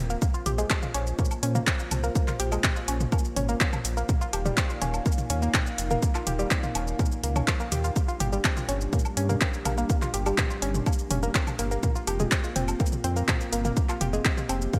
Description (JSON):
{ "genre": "melodic techno", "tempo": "124 BPM", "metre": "4/4", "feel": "straight", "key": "unclear", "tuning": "A4 = 444 Hz", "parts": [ { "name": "dark analog pad", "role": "sustained chords", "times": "0.0-14.8 s", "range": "G3 to F5", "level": "-38 LUFS", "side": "equal", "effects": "chorus, sidechain pumping" }, { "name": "round analog bass", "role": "bass", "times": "0.0-14.7 s", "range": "Eb1 to Bb2", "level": "-31 LUFS", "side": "equal", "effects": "tube saturation, sidechain pumping" }, { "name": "bowed-like drone", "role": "drone", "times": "0.0-14.8 s", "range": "Bb2 to Bb3", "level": "-46 LUFS", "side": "equal", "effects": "none" }, { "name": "woody wave-folded pluck", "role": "arpeggios", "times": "0.1-14.8 s", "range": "F3 to G5", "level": "-34 LUFS", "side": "equal", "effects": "chorus, sidechain pumping, delay" }, { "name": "deep house drum kit", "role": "drums", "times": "0.1-14.8 s", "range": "handclaps, hi-hat, shaker, toms, woodblock", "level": "-32 LUFS", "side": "equal", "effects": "studio reverb, gated reverb" }, { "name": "electronic kick drum", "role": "drums", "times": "0.2-14.8 s", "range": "none", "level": "-28 LUFS", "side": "equal", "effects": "overdrive, studio reverb" } ], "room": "light reverb", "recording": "bright 1980s-style digital production", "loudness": "-26 LUFS", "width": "mono", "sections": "0.0-14.8 A section", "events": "none", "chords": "0.2 Bbm; 4.1 Eb; 8.0 Gm; 11.8 Fsus4", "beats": "| 0.22 0.70 1.19 1.67 | 2.15 2.64 3.12 3.61 | 4.09 4.57 5.06 5.54 | 6.03 6.51 6.99 7.48 | 7.96 8.45 8.93 9.41 | 9.90 10.38 10.86 11.35 | 11.83 12.32 12.80 13.28 | 13.77 14.25 14.73" }